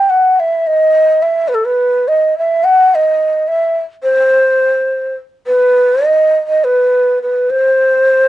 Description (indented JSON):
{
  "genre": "balkan folk",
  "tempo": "free time",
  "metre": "none",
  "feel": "none",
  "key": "unclear",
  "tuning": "A4 = 442 Hz",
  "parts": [
    { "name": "breathy mellow ney", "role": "solo", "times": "0.0-8.3 s", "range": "A4 to G5", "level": "-10 LUFS", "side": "equal", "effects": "none" }
  ],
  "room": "light reverb",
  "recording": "nothing above 10.3 kHz",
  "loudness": "-10 LUFS",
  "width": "side -14 dB against mid",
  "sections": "0.0-8.3 A section",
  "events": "none",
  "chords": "none"
}